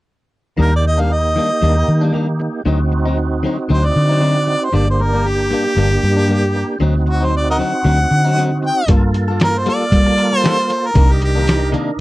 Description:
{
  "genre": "straight-eighth soul blues",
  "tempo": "116 BPM",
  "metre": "4/4",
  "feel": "swing 55% on 16ths",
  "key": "G minor from 8.9 s",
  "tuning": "A4 = 444 Hz",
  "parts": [
    { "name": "warm harmonica", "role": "melody", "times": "0.6-11.7 s", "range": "F#4 to G5", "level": "-18 LUFS", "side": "equal", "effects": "none" },
    { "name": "tonewheel organ", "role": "accompaniment", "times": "0.6-12.0 s", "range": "Bb3 to Bb4", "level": "-22 LUFS", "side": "right 4 dB", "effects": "overdrive, chorus vibrato, slow rotary speaker" },
    { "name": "direct-recorded clean electric guitar", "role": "stabs", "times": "0.6-11.9 s", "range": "G2 to A4", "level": "-21 LUFS", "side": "left 4 dB", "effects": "none" },
    { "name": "vintage muted fingered electric bass", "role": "bass", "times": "0.6-11.7 s", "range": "G1 to G3", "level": "-16 LUFS", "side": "equal", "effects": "none" },
    { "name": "lo-fi sampler-style drum kit", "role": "drums", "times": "8.9-11.9 s", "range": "hi-hat, kick drum, snare drum", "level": "-15 LUFS", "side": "equal", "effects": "none" }
  ],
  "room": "little or no reverb",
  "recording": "dry, close 1970s-style studio recording",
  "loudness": "-13 LUFS",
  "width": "side -18 dB against mid",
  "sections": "0.6-8.9 A section; 8.9-12.0 B section",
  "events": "harmonica solo 8.9-12.0",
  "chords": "0.6 Ebmaj7; 2.7 D7b9; 4.7 Gm; 6.8 D7b9; 8.9 Gm9; 11.0 Cm9"
}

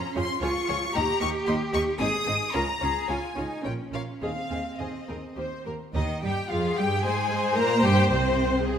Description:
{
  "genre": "quick classical-period movement for string orchestra",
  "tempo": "103-115 BPM",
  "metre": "3/4",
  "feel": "rubato",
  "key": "Ab major",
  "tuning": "A4 = 440 Hz",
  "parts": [
    { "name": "rich studio violin section", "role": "melody", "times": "0.0-8.8 s", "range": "C5 to Eb6", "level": "-30 LUFS", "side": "left 4 dB", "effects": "none" },
    { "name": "rich studio cello section", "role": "bass", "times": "0.0-8.8 s", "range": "C3 to Bb4", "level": "-30 LUFS", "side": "right 2 dB", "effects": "none" },
    { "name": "rich studio violin section", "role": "second line", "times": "0.2-8.8 s", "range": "C4 to Eb5", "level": "-32 LUFS", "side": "left 4 dB", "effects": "none" },
    { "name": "rich studio viola section", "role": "accompaniment", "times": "0.2-8.8 s", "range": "F3 to C5", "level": "-30 LUFS", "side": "equal", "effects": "none" },
    { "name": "warm studio double bass section", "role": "bass", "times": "0.2-8.8 s", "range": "Ab1 to Bb2", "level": "-30 LUFS", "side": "right 2 dB", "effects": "none" }
  ],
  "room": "moderate scoring stage reverb, RT60 1.6 s",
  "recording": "none",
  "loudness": "-24 LUFS",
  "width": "side -8 dB against mid",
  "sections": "0.0-5.9 A section; 5.9-8.8 B section",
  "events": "none",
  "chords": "0.4 Db; 1.0 Eb; 2.0 Ab; 2.6 Db; 3.7 Bbm; 4.2 Ab/Eb; 5.4 Eb; 5.9 Ab5; 7.6 C5"
}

